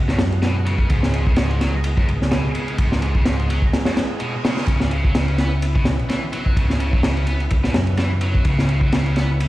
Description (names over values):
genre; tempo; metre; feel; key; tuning
breakbeat, breaks; 127 BPM; 4/4; swing 56% on 16ths; C# minor; A4 = 440 Hz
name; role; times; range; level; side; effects
bright tonewheel organ; sustained chords; 0.0-9.5 s; C#3 to G#4; -29 LUFS; right 1 dB; chorus vibrato, slow rotary speaker, vintage 12-bit sampler grit, sidechain pumping
picked electric bass; bass; 0.0-9.5 s; C#2 to F#2; -20 LUFS; equal; none
scooped high-gain guitar; riff; 0.1-9.3 s; F#2 to B3; -27 LUFS; equal; distortion, overdrive, low-pass filter, digital delay
crunchy breakbeat drum kit; drums; 0.1-9.5 s; kick drum, ride cymbal, snare drum; -20 LUFS; equal; none
reverse cymbal; sound effects; 4.0-4.7 s; none; -35 LUFS; right 4 dB; none
room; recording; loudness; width
small room ambience; played on a big sound system in a bare room, large studio reverb, vinyl crackle; -17 LUFS; side -16 dB against mid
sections
0.0-9.5 A section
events
break 3.7-4.7; reverse cymbal 4.0-4.7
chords
0.0 G#m7/C#; 4.7 C#m7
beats
0.42 | 0.90 1.37 1.84 2.31 | 2.79 3.26 3.73 4.20 | 4.68 5.15 5.62 6.09 | 6.57 7.04 7.51 7.98 | 8.46 8.93 9.40